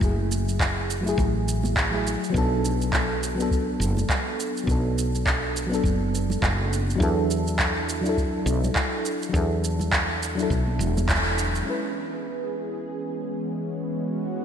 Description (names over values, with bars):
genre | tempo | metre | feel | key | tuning
sunset chillout | 103 BPM | 4/4 | swing 58% on 16ths | unclear | A4 = 439 Hz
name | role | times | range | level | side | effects
mellow FM electric piano | accompaniment | 0.0-14.4 s | F#3 to B4 | -27 LUFS | equal | chorus, auto-pan, digital delay
woody fretless electric bass | bass | 0.0-11.6 s | E1 to E2 | -26 LUFS | equal | none
electronic kick drum | drums | 0.0-11.2 s | none | -27 LUFS | equal | none
electronic shaker and handclaps | drums | 0.0-11.6 s | none | -28 LUFS | right 1 dB | overdrive, gated reverb
congas | percussion | 1.6-11.1 s | none | -36 LUFS | right 4 dB | none
lush unison pad | sustained chords | 11.7-14.4 s | E3 to G#4 | -30 LUFS | equal | chorus
room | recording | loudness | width
moderate lush hall reverb, RT60 3.1 s | bright 1980s-style digital production | -22 LUFS | side -8 dB against mid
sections
0.0-11.7 A section; 11.7-14.4 B section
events
band accent 11.1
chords
0.0 F#m9; 2.3 Bm7; 7.0 E9sus4; 11.7 C#m7